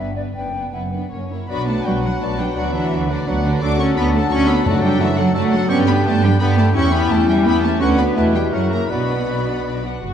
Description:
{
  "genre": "quick classical-period movement for symphony orchestra",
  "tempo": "156-176 BPM",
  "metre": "3/4",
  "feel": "rubato",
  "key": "B minor",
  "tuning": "A4 = 440 Hz",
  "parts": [
    { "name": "dark studio violin section", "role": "melody", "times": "0.0-10.1 s", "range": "F#4 to D6", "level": "-29 LUFS", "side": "left 4 dB", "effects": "none" },
    { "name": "mellow hollow silver concert flute", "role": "second line", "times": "0.0-9.8 s", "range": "D5 to G5", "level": "-29 LUFS", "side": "left 1 dB", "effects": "none" },
    { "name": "warm studio violin section", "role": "second line", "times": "0.0-10.1 s", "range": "C#4 to B5", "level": "-30 LUFS", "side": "left 3 dB", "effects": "none" },
    { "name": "rich studio viola section", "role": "accompaniment", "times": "0.0-10.1 s", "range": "A3 to B4", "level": "-26 LUFS", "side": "right 2 dB", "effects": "none" },
    { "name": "rich studio cello section", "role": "bass", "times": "0.0-10.1 s", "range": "F#2 to D4", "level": "-21 LUFS", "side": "right 2 dB", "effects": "none" },
    { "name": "rich studio double bass section", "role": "bass", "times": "0.0-10.1 s", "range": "F#1 to G2", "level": "-22 LUFS", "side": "right 2 dB", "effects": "none" },
    { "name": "mellow clarinet", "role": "second line", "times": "1.5-9.8 s", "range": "C#4 to F#4", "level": "-29 LUFS", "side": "left 2 dB", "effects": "none" },
    { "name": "mellow oboe", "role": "second line", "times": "1.5-9.8 s", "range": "G4 to B4", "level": "-30 LUFS", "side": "equal", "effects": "none" },
    { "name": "mellow bassoon", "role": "accompaniment", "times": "1.5-9.8 s", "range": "B2 to F#3", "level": "-27 LUFS", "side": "equal", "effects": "none" },
    { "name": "dark French horn section", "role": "sustained chords", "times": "1.5-9.8 s", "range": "D4 to B4", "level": "-25 LUFS", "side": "left 7 dB", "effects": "none" },
    { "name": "timpani", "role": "percussion", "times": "4.7-5.1 s", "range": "F#2", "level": "-25 LUFS", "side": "equal", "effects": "none" }
  ],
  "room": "wet scoring stage reverb, RT60 1.9 s",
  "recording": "dark, warm production",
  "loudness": "-15 LUFS",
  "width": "side -8 dB against mid",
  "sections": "0.0-1.5 A section; 1.5-10.0 B section",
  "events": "none",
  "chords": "0.4 Bm/F#; 1.1 F#; 1.5 Bm; 2.6 Bm/D; 3.6 D; 4.7 D/F#; 5.7 G; 6.8 C#dim/E; 7.8 Bm/D; 8.2 Em; 8.5 F#7; 8.9 Bm",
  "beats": "| 0.36 0.74 1.12 | 1.50 1.86 2.21 | 2.57 2.92 3.27 | 3.62 3.97 4.31 | 4.66 5.00 5.35 | 5.70 6.05 6.40 | 6.75 7.10 7.45 | 7.80 8.16 8.53 | 8.90 9.28 9.65 | 10.03"
}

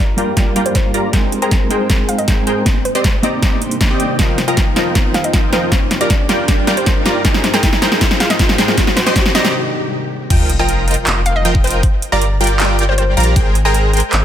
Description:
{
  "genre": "future bass",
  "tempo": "157 BPM",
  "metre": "4/4",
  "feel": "half-time",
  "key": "C minor",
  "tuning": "A4 = 440 Hz",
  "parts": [
    { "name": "hollow square pluck", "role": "melody", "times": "0.0-13.8 s", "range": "C5 to G5", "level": "-23 LUFS", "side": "equal", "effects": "chorus, sidechain pumping, ping-pong delay" },
    { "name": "ethereal airy pad", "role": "sustained chords", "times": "0.1-10.3 s", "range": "F2 to G5", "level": "-28 LUFS", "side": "left 1 dB", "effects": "ensemble chorus, built-in reverb, sidechain pumping" },
    { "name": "riser and sub drop", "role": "sound effects", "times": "0.7-11.8 s", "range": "none", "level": "-24 LUFS", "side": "equal", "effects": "none" },
    { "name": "clean electric guitar", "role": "accompaniment", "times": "0.2-4.2 s", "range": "G3 to G5", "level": "-22 LUFS", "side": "right 2 dB", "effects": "tremolo, sidechain pumping, ping-pong delay" },
    { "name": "supersaw stab", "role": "riff", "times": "0.2-14.2 s", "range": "F3 to C6", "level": "-18 LUFS", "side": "equal", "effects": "sidechain pumping, low-pass filter" },
    { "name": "big-room dance drum kit", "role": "drums", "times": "0.2-14.2 s", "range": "crash cymbal, handclaps, hi-hat, snare drum", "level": "-18 LUFS", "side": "equal", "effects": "none" },
    { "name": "electronic kick drum", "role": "drums", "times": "0.4-13.4 s", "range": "none", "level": "-15 LUFS", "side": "equal", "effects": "none" },
    { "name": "concert harp", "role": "arpeggios", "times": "4.2-12.4 s", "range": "Bb3 to Ab4", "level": "-27 LUFS", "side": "left 1 dB", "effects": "none" },
    { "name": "wide unison pluck", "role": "arpeggios", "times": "10.3-14.2 s", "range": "G5 to Bb5", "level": "-26 LUFS", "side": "right 1 dB", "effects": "cassette tape, sidechain pumping, ping-pong delay" },
    { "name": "saturated sub bass", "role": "bass", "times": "10.3-14.2 s", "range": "F1 to Bb1", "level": "-16 LUFS", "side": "equal", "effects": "sidechain pumping" }
  ],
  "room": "light reverb, digital ambience",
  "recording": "none",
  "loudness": "-12 LUFS",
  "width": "side -10 dB against mid",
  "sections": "0.0-10.3 A section; 10.3-14.2 B section",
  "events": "build-up 0.0-10.3; drum fill 0.0-9.5; filter sweep on supersaw synth 0.0-10.3; filter sweep on synth pluck 0.0-10.3; riser 0.7-9.5; break 9.5-10.3; drop 10.3-14.2; impact 10.3-11.8",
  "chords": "0.0 Gm7; 1.1 Abmaj7; 2.7 Cm9; 4.2 F7sus4; 5.7 Gm7; 7.2 Abmaj7; 8.8 Cm9; 10.3 F7sus4; 11.8 Gm7; 13.4 Abmaj7",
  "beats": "0.37 0.75 | 1.13 1.51 1.90 2.28 | 2.66 3.04 3.42 3.81 | 4.19 4.57 4.95 5.34 | 5.72 6.10 6.48 6.87 | 7.25 7.63 8.01 8.39 | 8.78 9.16 9.54 9.92 | 10.30 10.69 11.07 11.45 | 11.83 12.21 12.60 12.98 | 13.36 13.74 14.13"
}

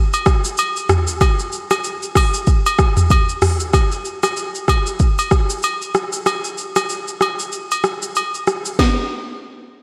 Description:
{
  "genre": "afrobeats",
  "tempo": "95 BPM",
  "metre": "4/4",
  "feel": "swing 58% on 16ths",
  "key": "none",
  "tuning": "none",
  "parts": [
    { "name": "afro-pop drum kit", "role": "drums", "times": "0.1-9.0 s", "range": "hi-hat, kick drum, rim click, shaker, snare drum, toms", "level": "-19 LUFS", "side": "equal", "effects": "none" },
    { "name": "agogo bells", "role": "percussion", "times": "0.1-9.1 s", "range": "none", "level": "-24 LUFS", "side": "equal", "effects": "none" }
  ],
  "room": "moderate lush hall reverb, RT60 2.0 s",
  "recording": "dreamy mix soaked in reverb",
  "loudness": "-18 LUFS",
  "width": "mono",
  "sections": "0.0-3.7 A section; 3.7-8.8 B section; 8.8-9.8 C section",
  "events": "break 6.3-8.8",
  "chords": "none",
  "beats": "0.58 | 1.21 1.84 2.47 3.10 | 3.74 4.37 5.00 5.63 | 6.26 6.89 7.53 8.16 | 8.79"
}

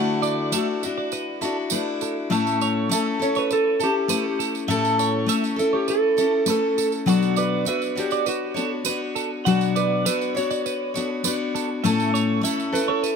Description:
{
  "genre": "acoustic pop",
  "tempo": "101 BPM",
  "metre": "4/4",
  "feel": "straight",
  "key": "unclear",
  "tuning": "A4 = 444 Hz",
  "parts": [
    { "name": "picked steel-string acoustic guitar", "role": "accompaniment", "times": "0.0-13.2 s", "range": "A2 to C#5", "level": "-23 LUFS", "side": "left 3 dB", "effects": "none" },
    { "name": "twelve-string electric guitar", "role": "arpeggios", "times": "0.0-13.2 s", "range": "A4 to F#5", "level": "-28 LUFS", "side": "right 6 dB", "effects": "phaser" },
    { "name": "tambourine", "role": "percussion", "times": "0.2-13.2 s", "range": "none", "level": "-30 LUFS", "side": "right 10 dB", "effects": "none" },
    { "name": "clean lap steel guitar", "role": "melody", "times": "3.2-13.2 s", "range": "F#4 to C#5", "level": "-24 LUFS", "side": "right 2 dB", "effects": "digital delay" }
  ],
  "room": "light reverb",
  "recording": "none",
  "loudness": "-20 LUFS",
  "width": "side -6 dB against mid",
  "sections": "0.0-13.2 A section",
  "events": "none",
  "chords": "0.0 Dadd9; 2.3 A; 7.1 Bmadd9; 11.8 A",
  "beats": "0.53 1.12 1.72 | 2.31 2.91 3.50 4.10 | 4.69 5.29 5.88 6.48 | 7.08 7.67 8.27 8.86 | 9.46 10.05 10.65 11.24 | 11.84 12.43 13.03"
}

